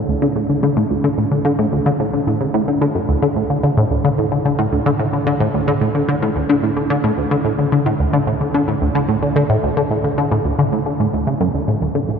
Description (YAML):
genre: ambient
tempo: 110 BPM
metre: 4/4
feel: straight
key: unclear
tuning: A4 = 436 Hz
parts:
  - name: tight sequenced synth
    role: solo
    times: 0.0-12.2 s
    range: D2 to D3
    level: -15 LUFS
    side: equal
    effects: chorus, phaser, ping-pong delay
room: wet cathedral reverb, RT60 6.0 s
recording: dreamy mix soaked in reverb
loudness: -15 LUFS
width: side -6 dB against mid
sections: 0.0-11.8 A section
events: none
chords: none